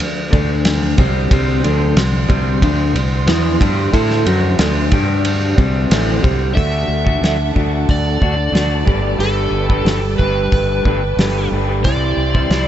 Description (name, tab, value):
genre	psychedelic rock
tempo	91 BPM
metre	4/4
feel	straight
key	D mixolydian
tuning	A4 = 440 Hz
part	dark studio string section	sustained chords	0.0-12.7 s	C4 to C6	-29 LUFS	right 4 dB	none
part	hand-pumped harmonium	drone	0.0-6.6 s	D2	-28 LUFS	left 2 dB	none
part	cloth-damped thuddy drum kit	drums	0.0-12.7 s	hi-hat, kick drum, ride cymbal, snare drum	-18 LUFS	equal	none
part	congas	percussion	0.0-6.4 s	none	-28 LUFS	equal	none
part	electric guitar through a small old amp	riff	0.3-12.7 s	A2 to C5	-19 LUFS	left 1 dB	harmonic tremolo
part	fingered electric bass	bass	0.3-12.7 s	G1 to A2	-18 LUFS	equal	none
part	overdriven slide guitar	melody	6.5-12.7 s	A4 to E5	-21 LUFS	equal	analog chorus, ping-pong delay
room	light reverb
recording	nothing above 8.0 kHz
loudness	-13 LUFS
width	side -11 dB against mid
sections	0.0-6.6 A section; 6.6-12.7 B section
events	none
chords	0.0 D5; 1.3 C5; 4.9 G5; 5.6 C5; 6.6 D; 8.9 Gadd9; 11.9 C